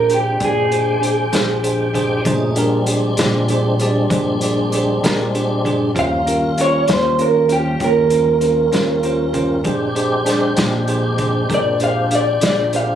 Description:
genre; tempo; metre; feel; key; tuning
slow blues; 65 BPM (dotted quarters); 12/8; straight; Bb mixolydian; A4 = 439 Hz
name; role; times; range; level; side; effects
electric guitar through a small old amp; melody; 0.0-13.0 s; G4 to F5; -17 LUFS; right 2 dB; none
bell-like tine electric piano; accompaniment; 0.0-13.0 s; Db4 to D5; -20 LUFS; right 1 dB; none
tonewheel organ; sustained chords; 0.0-13.0 s; G3 to G5; -24 LUFS; left 2 dB; slow rotary speaker, overdrive, chorus vibrato
upright bass; bass; 0.0-13.0 s; Bb1 to Eb2; -22 LUFS; equal; none
vintage drum kit; drums; 0.1-12.9 s; hi-hat, kick drum, snare drum; -24 LUFS; equal; none
room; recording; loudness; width
light reverb; recorded on a phone in the room, studio reverb; -14 LUFS; side -9 dB against mid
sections
0.0-13.0 A section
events
none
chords
0.0 Bb13; 6.0 Eb13; 9.7 Bb13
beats
0.41 1.34 | 2.26 3.18 4.11 5.03 | 5.96 6.88 7.80 8.73 | 9.65 10.57 11.50 12.42

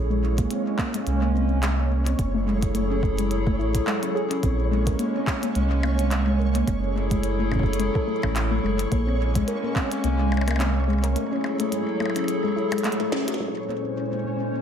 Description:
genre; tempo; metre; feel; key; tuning
IDM; 107 BPM; 4/4; swing 56% on 16ths; Bb minor; A4 = 440 Hz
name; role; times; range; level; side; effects
warbly tape-like pad; sustained chords; 0.0-14.6 s; Bb2 to C5; -27 LUFS; equal; chorus, built-in reverb
warm sub bass; bass; 0.0-11.2 s; Gb1 to C2; -24 LUFS; equal; none
flickering grainy texture; texture; 0.0-14.6 s; Db4 to Db5; -34 LUFS; right 3 dB; built-in reverb
warbly dusty pluck; arpeggios; 0.1-14.6 s; Ab3 to Bb4; -28 LUFS; left 3 dB; chorus, analog delay
electronic kick drum; drums; 0.4-9.9 s; none; -26 LUFS; equal; overdrive
glitchy drum kit; drums; 0.4-13.6 s; handclaps, hi-hat, percussion blips, snare drum; -32 LUFS; left 1 dB; overdrive, low-pass filter on snare, low-pass filter on hats, low-pass filter on perc, ping-pong delay
room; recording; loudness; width
moderate plate reverb, RT60 1.3 s; dreamy mix soaked in reverb; -21 LUFS; side -8 dB against mid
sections
0.0-13.4 A section; 13.4-14.6 B section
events
drum fill 13.0-13.4; band accent 13.1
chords
0.0 Bbm9; 2.2 Gbm9; 4.4 Bbm9; 6.7 Gbm9; 8.9 Bbm9; 11.2 Gbm9; 13.4 Bbm9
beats
0.51 1.07 1.63 | 2.19 2.75 3.31 3.87 | 4.43 4.99 5.55 6.11 | 6.67 7.23 7.79 8.36 | 8.92 9.48 10.04 10.60 | 11.16 11.72 12.28 12.84 | 13.40 13.96 14.52

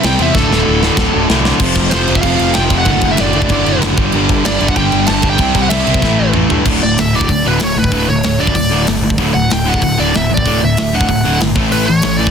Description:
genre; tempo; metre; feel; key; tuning
punk rock; 190 BPM; 4/4; straight; D major from 6.7 s; A4 = 439 Hz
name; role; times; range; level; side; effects
smooth overdriven lead guitar; melody; 0.0-12.3 s; A4 to A5; -18 LUFS; right 2 dB; tape echo
cranked stack guitar; riff; 0.0-12.3 s; D2 to C4; -17 LUFS; left 11 dB; overdrive
distorted electric guitar; riff; 0.0-12.3 s; D2 to C4; -18 LUFS; right 14 dB; distortion
fuzz picked electric bass; bass; 0.0-12.3 s; D1 to G2; -18 LUFS; equal; overdrive
tight metal drum kit; drums; 0.0-12.3 s; crash cymbal, hi-hat, kick drum, snare drum, toms; -17 LUFS; equal; soft clipping on kick
room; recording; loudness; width
light reverb; dense, heavily limited modern master; -11 LUFS; side -7 dB against mid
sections
0.0-1.6 A section; 1.6-6.7 B section; 6.7-12.3 C section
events
drum fill 0.4-1.6, 6.0-6.7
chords
0.4 D5; 1.6 F5; 2.9 D/F#; 4.0 G5; 5.4 C; 6.0 A5; 6.7 D5; 11.6 A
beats
0.04 | 0.35 0.67 0.98 1.30 | 1.61 1.93 2.25 2.56 | 2.88 3.19 3.51 3.82 | 4.14 4.45 4.77 5.08 | 5.40 5.71 6.03 6.35 | 6.66 6.98 7.29 7.61 | 7.93 8.24 8.56 8.88 | 9.19 9.51 9.82 10.14 | 10.46 10.77 11.09 11.40 | 11.72 12.04

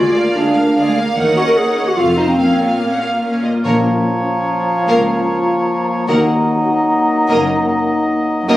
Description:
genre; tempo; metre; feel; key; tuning
quick classical-period movement for symphony orchestra; 149 BPM; 3/4; rubato; Bb minor; A4 = 441 Hz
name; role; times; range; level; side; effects
rich chamber violin section; melody; 0.0-8.6 s; Db5 to Gb5; -25 LUFS; equal; none
clear chamber violin section; second line; 0.0-8.6 s; Bb4 to Gb5; -22 LUFS; equal; none
mellow clarinet; second line; 0.0-8.6 s; Bb3 to Bb4; -18 LUFS; equal; none
rich chamber viola section; accompaniment; 0.0-8.6 s; Ab3 to Db5; -20 LUFS; right 1 dB; none
rich chamber cello section; bass; 0.0-8.6 s; Db2 to Bb2; -23 LUFS; equal; none
rich chamber double bass section; bass; 0.0-8.6 s; F1 to Eb2; -26 LUFS; right 1 dB; none
bright oboe; second line; 3.6-8.6 s; Db5 to Eb5; -24 LUFS; right 1 dB; none
warm bassoon; accompaniment; 3.6-8.6 s; F3 to Gb3; -19 LUFS; equal; none
warm French horn section; sustained chords; 3.6-8.6 s; Bb3 to Gb4; -22 LUFS; left 3 dB; none
timpani; percussion; 3.6-6.6 s; Bb2 to Eb3; -26 LUFS; left 1 dB; none
mellow hollow concert flute; second line; 3.7-8.5 s; Bb5; -24 LUFS; equal; none
room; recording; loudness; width
wet recital hall reverb, RT60 1.3 s; recorded on a phone in the room, club reverb, compression; -13 LUFS; side -15 dB against mid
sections
0.0-3.6 A section; 3.6-8.6 B section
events
none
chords
0.0 Bb7/D; 1.2 Ebm7; 2.0 F7; 2.4 Bbm; 4.9 Bbm/Db; 6.1 Ebm; 7.3 Ebm/Gb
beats
0.36 0.77 | 1.17 1.57 1.97 | 2.38 2.80 3.22 | 3.65 4.06 4.47 | 4.87 5.28 5.68 | 6.08 6.48 6.88 | 7.29 7.68 8.08 | 8.48

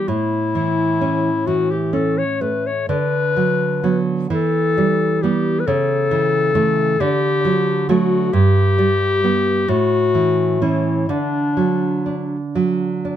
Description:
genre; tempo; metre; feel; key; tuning
romantic duo for clarinet and classical guitar; 44 BPM (dotted quarters); 6/8; uneven beats, rubato; D major; A4 = 435 Hz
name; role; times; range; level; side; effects
clear clarinet; melody; 0.0-12.6 s; D4 to C#5; -19 LUFS; left 5 dB; none
nylon-string guitar; accompaniment; 0.0-13.2 s; G2 to D4; -18 LUFS; right 4 dB; none
room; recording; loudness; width
light reverb; close, detailed microphones; -16 LUFS; side -10 dB against mid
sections
0.0-13.2 A section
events
none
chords
0.1 A; 2.9 Bm/D; 4.3 Em; 5.7 A/C#; 7.0 D; 8.3 G; 9.7 A; 11.1 D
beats
| 0.09 1.48 | 2.89 4.30 | 5.67 7.00 | 8.33 9.68 | 11.09 12.56

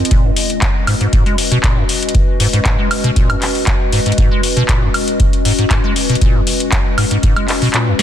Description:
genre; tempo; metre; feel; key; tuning
acid house; 118 BPM; 4/4; straight; unclear; A4 = 440 Hz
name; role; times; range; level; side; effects
acid bass, square; riff; 0.0-7.9 s; Gb2 to Ab3; -18 LUFS; equal; tube saturation, wide subtle chorus, sidechain pumping
warbly tape-like pad; texture; 0.0-8.0 s; Ab3 to Eb5; -19 LUFS; left 2 dB; chorus, built-in reverb, sidechain pumping
booming analog drum machine; drums; 0.1-8.0 s; handclaps, hi-hat, snare drum, woodblock; -19 LUFS; left 1 dB; studio reverb
electronic kick drum; drums; 0.1-7.3 s; none; -15 LUFS; equal; studio reverb
room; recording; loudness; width
light reverb; dense, heavily limited modern master; -12 LUFS; side -10 dB against mid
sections
0.0-8.0 A section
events
kick drops out 7.7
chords
0.1 Abm7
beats
| 0.11 0.62 1.13 1.64 | 2.15 2.65 3.16 3.67 | 4.18 4.69 5.20 5.70 | 6.21 6.72 7.23 7.74

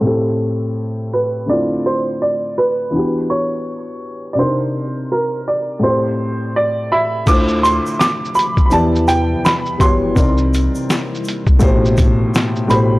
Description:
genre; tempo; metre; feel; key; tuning
lo-fi hip hop; 83 BPM; 4/4; swing 62% on 16ths; D dorian; A4 = 442 Hz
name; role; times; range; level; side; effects
warm upright piano; melody; 0.0-13.0 s; Bb4 to D6; -18 LUFS; right 1 dB; low-pass filter
felt-muted upright piano; accompaniment; 0.0-13.0 s; A2 to D5; -18 LUFS; left 1 dB; cassette tape, low-pass filter
granular cloud pad; sustained chords; 8.0-13.0 s; B2 to E5; -28 LUFS; left 1 dB; none
upright bass; bass; 7.3-13.0 s; G1 to E2; -19 LUFS; equal; tube saturation
lo-fi sampler-style drum kit; drums; 7.3-12.9 s; crash cymbal, hi-hat, kick drum, shaker, snare drum; -16 LUFS; equal; vintage 12-bit sampler grit
egg shaker; percussion; 7.3-12.9 s; none; -36 LUFS; equal; none
room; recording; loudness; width
light reverb, small room ambience; dry, gritty hardware recording, cassette tape, low-pass filter; -14 LUFS; side -20 dB against mid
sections
0.0-7.3 A section; 7.3-13.0 B section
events
filter sweep 0.0-7.3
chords
0.0 Am7; 1.5 Dm9; 2.9 Em9; 4.4 Cm9; 5.8 Am7; 7.3 Dm9; 8.7 Em9; 10.2 Cm9; 11.6 Am9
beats
0.04 0.76 | 1.48 2.21 2.93 3.65 | 4.38 5.10 5.82 6.54 | 7.27 7.99 8.71 9.44 | 10.16 10.88 11.61 12.33

